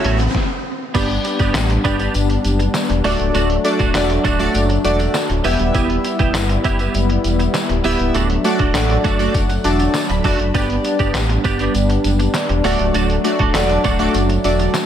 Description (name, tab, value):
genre	dance-pop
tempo	100 BPM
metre	4/4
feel	straight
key	D major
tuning	A4 = 439 Hz
part	chorused retro synth keys	accompaniment	0.0-14.8 s	A3 to B5	-20 LUFS	left 1 dB	sidechain pumping
part	warm analog pad	sustained chords	0.0-14.9 s	C#3 to E4	-22 LUFS	left 1 dB	chorus, sidechain pumping
part	twelve-string electric guitar	riff	0.0-14.8 s	A3 to G4	-23 LUFS	right 5 dB	ensemble chorus
part	sub bass with octave	bass	0.0-14.7 s	C#1 to A1	-19 LUFS	equal	sidechain pumping
part	lo-fi sampler-style drum kit	drums	0.0-14.9 s	crash cymbal, handclaps, hi-hat, kick drum, snare drum	-22 LUFS	equal	none
part	tambourine	percussion	0.9-14.9 s	none	-35 LUFS	left 8 dB	none
room	moderate plate reverb, RT60 1.9 s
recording	dreamy mix soaked in reverb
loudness	-15 LUFS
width	side -10 dB against mid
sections	0.9-14.9 A section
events	stop 0.3-0.9; synth keys fill 8.7-10.5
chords	0.0 A6; 0.9 G; 3.0 D; 5.4 Em; 8.1 D; 10.5 G; 12.6 D